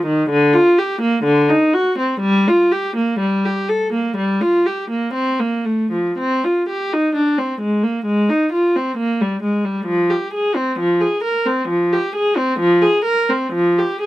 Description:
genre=classical, baroque-style suite movement for unaccompanied viola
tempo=57-67 BPM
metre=4/4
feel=rubato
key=G minor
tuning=A4 = 439 Hz
part: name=warm viola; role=solo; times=0.0-14.1 s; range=D3 to Bb4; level=-15 LUFS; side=equal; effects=none
room=little or no reverb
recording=close, detailed microphones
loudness=-15 LUFS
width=side -15 dB against mid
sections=0.0-6.2 A section; 6.2-14.1 A section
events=none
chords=none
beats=0.31 1.25 | 2.21 3.19 4.16 5.14 | 6.17 7.13 8.04 8.95 | 9.86 10.77 11.67 12.58 | 13.52

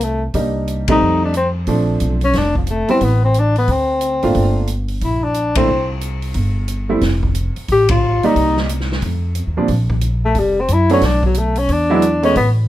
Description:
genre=jazz, small-group swing and bop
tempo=180 BPM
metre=4/4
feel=swing 63% on 8ths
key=F major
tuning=A4 = 440 Hz
part: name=breathy tenor saxophone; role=melody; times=0.0-12.5 s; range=F3 to G4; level=-16 LUFS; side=left 2 dB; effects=none
part: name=upright bass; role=bass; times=0.0-12.7 s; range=F1 to Gb2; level=-18 LUFS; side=equal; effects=none
part: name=swinging big-band drum kit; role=drums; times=0.0-12.5 s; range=hi-hat, kick drum, ride cymbal, snare drum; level=-24 LUFS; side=equal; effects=none
part: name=clear upright piano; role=accompaniment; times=0.3-12.3 s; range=Bb2 to D5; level=-18 LUFS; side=right 3 dB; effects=none
room=light reverb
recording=none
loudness=-14 LUFS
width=side -14 dB against mid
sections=0.0-9.7 A section; 9.7-12.7 B section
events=band accent 0.8, 5.5, 7.9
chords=0.3 Cm9; 1.0 F9; 1.7 Bbmaj9; 3.0 Amadd9; 3.7 D5; 4.4 Gm7; 5.7 C5; 7.0 F; 8.4 Cm7; 9.0 F5; 9.7 Bb5; 11.0 Bm7; 11.7 E7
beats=0.01 | 0.34 0.68 1.01 1.34 | 1.68 2.01 2.35 2.68 | 3.02 3.35 3.69 4.02 | 4.35 4.69 5.02 5.36 | 5.69 6.02 6.36 6.69 | 7.03 7.36 7.69 8.03 | 8.36 8.69 9.03 9.36 | 9.69 10.03 10.36 10.69 | 11.03 11.36 11.69 12.03 | 12.36

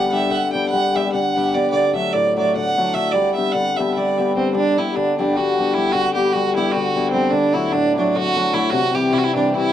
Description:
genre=balkan folk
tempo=300 BPM (eighths)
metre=7/8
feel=straight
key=G major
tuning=A4 = 440 Hz
part: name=rich violin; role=melody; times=0.0-9.7 s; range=C4 to G5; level=-19 LUFS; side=right 3 dB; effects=tape echo
part: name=hammered dulcimer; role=accompaniment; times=0.0-9.7 s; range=A2 to G4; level=-20 LUFS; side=left 4 dB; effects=none
room=light reverb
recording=dry, close 1970s-style studio recording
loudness=-16 LUFS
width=side -10 dB against mid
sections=0.0-4.5 A section; 4.5-9.7 A section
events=none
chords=0.0 G; 1.7 D; 3.1 G; 7.3 D; 8.7 C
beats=0.09 | 0.29 0.49 0.70 0.90 1.10 1.31 1.51 | 1.71 1.91 2.12 2.32 2.52 2.72 2.92 | 3.13 3.33 3.53 3.73 3.93 4.13 4.33 | 4.53 4.73 4.93 5.13 5.33 5.53 5.73 | 5.93 6.13 6.33 6.53 6.73 6.93 7.13 | 7.33 7.53 7.73 7.92 8.12 8.32 8.52 | 8.72 8.92 9.12 9.31 9.51 9.71

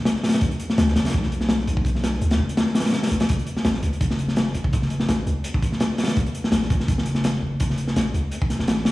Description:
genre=drum and bass, jungle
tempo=167 BPM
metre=4/4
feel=swing 54% on 16ths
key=F# minor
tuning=A4 = 437 Hz
part: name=crunchy breakbeat drum kit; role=drums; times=0.1-8.9 s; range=hi-hat, kick drum, snare drum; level=-21 LUFS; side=equal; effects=none
part: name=long sustained 808-style bass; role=bass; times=0.4-8.9 s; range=E1 to D2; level=-24 LUFS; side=equal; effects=none
room=moderate echo chamber reverb, RT60 2.1 s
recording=played on a big sound system in a bare room, stone room reverb, vinyl crackle, small room ambience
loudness=-20 LUFS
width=side -18 dB against mid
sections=0.0-8.9 A section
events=none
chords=none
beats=0.06 | 0.41 0.77 1.13 1.49 | 1.85 2.21 2.57 2.93 | 3.29 3.65 4.01 4.37 | 4.73 5.09 5.45 5.80 | 6.16 6.52 6.88 7.24 | 7.60 7.96 8.32 8.68

